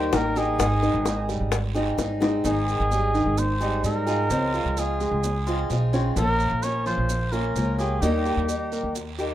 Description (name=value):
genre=latin, Cuban son and guajira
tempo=129 BPM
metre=4/4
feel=straight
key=Ab major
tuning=A4 = 436 Hz
part: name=trumpet with cup mute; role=melody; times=0.0-8.9 s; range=G4 to Db5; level=-28 LUFS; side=equal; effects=plate reverb
part: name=picked acoustic archtop guitar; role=accompaniment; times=0.0-9.3 s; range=Db3 to Ab4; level=-27 LUFS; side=left 1 dB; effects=plate reverb
part: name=clear grand piano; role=arpeggios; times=0.0-9.3 s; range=Eb3 to G5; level=-30 LUFS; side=right 1 dB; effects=plate reverb
part: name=upright bass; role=bass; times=0.0-9.3 s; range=Ab1 to Ab2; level=-26 LUFS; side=right 1 dB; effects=none
part: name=bongos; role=percussion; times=0.1-2.3 s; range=none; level=-26 LUFS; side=left 5 dB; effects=none
part: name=guiro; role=percussion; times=0.1-9.3 s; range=none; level=-42 LUFS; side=right 10 dB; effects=none
part: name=maracas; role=percussion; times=0.1-9.3 s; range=none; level=-38 LUFS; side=right 10 dB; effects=none
room=moderate studio reverb, RT60 0.5 s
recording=rough home demo mix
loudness=-21 LUFS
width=side -12 dB against mid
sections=0.0-2.4 A section; 2.4-9.3 A section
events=drum fill 2.0-2.4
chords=0.0 Eb; 0.6 Abmaj7; 4.3 Dbmaj7; 6.2 Bbm; 8.0 Eb